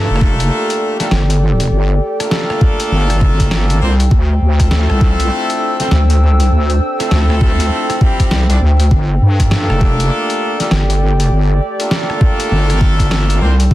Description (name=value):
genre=glitch hop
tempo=100 BPM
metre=4/4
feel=swing 62% on 16ths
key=G dorian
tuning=A4 = 439 Hz
part: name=dark analog pad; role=sustained chords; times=0.0-13.7 s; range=A4 to E6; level=-23 LUFS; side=equal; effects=lush chorus, sidechain pumping
part: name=bright horn section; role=stabs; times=0.0-13.5 s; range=G3 to D5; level=-20 LUFS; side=equal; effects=sidechain pumping, ping-pong delay
part: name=wobble bass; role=bass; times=0.0-13.7 s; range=F1 to G2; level=-12 LUFS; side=equal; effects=chorus, overdrive
part: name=warbly tape-like pad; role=texture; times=0.4-13.7 s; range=D4 to E6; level=-25 LUFS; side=equal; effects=chorus, built-in reverb, sidechain pumping
part: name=boom bap sampler-style drum kit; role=drums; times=0.2-13.7 s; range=hi-hat, rim click, snare drum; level=-20 LUFS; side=equal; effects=small room ambience
part: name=electronic kick drum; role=drums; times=0.2-13.7 s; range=none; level=-12 LUFS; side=equal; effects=overdrive, small room ambience
room=digital ambience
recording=dense, heavily limited modern master, vinyl crackle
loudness=-11 LUFS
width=side -15 dB against mid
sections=0.0-13.7 A section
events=none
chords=0.0 Gm9; 4.1 Dm9; 8.9 Gm9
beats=0.51 1.11 | 1.71 2.31 2.91 3.51 | 4.11 4.71 5.31 5.91 | 6.51 7.11 7.71 8.31 | 8.91 9.51 10.11 10.71 | 11.31 11.91 12.51 13.11 | 13.71